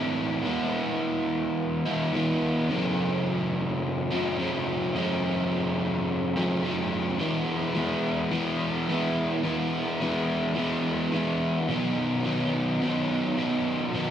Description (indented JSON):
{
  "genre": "rock",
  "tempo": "107 BPM",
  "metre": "4/4",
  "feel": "straight",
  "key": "E major",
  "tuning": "A4 = 440 Hz",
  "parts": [
    { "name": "crunchy overdriven guitar", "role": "solo", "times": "0.0-14.1 s", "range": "F#2 to E4", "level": "-24 LUFS", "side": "equal", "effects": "wide subtle chorus, diffuse ambient delay" }
  ],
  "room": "wet plate reverb, RT60 3.0 s",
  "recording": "dreamy mix soaked in reverb",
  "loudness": "-24 LUFS",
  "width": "side -9 dB against mid",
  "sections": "0.0-7.2 A section; 7.2-14.1 B section",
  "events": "none",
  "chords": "0.5 E; 2.7 F#m; 7.2 E; 11.7 B"
}